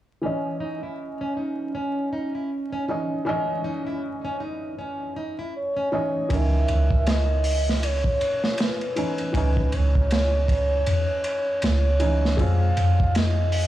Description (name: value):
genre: trip hop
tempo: 79 BPM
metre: 4/4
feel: swing 58% on 16ths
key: C# minor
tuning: A4 = 444 Hz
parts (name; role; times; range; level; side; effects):
- felt-muted upright piano; accompaniment; 0.2-13.7 s; D#3 to D#5; -30 LUFS; equal; harmonic tremolo, low-pass filter, tape echo
- warbly tape-like pad; sustained chords; 0.8-6.3 s; C#4; -32 LUFS; right 2 dB; chorus, built-in reverb, vintage 12-bit sampler grit
- nylon-string guitar; arpeggios; 0.2-6.3 s; C#4 to E4; -32 LUFS; equal; low-pass filter, tape echo
- pure breathy sine lead; melody; 5.6-13.7 s; B4 to F5; -26 LUFS; right 1 dB; chorus, dub echo
- soft 808-style bass; bass; 6.3-13.7 s; C#2 to F2; -22 LUFS; equal; tube saturation
- crunchy breakbeat drum kit; drums; 6.3-13.7 s; hi-hat, kick drum, ride cymbal, snare drum; -26 LUFS; right 1 dB; none
room: light reverb, small room ambience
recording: dry, gritty hardware recording, vinyl crackle, studio reverb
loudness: -21 LUFS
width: side -14 dB against mid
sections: 0.2-6.3 A section; 6.3-13.7 B section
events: filter sweep on felt piano 0.2-6.3, 6.3-13.7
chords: 0.2 C#madd9; 12.4 Fm